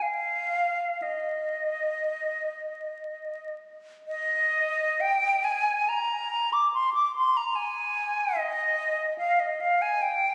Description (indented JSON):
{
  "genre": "classical, free, expressive piece for unaccompanied flute",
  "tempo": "49-74 BPM",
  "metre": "3/4",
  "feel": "rubato",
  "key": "Eb major",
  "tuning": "A4 = 440 Hz",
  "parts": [
    { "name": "bright silver concert flute", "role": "solo", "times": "0.0-10.3 s", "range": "Eb5 to D6", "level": "-27 LUFS", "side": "equal", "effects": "none" }
  ],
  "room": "wet church reverb, RT60 2.7 s",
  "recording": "recorded on a phone in the room, club reverb, vinyl crackle, compression",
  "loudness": "-27 LUFS",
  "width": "mono",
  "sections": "0.0-4.1 A section; 4.1-10.3 A section",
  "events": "none",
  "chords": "none"
}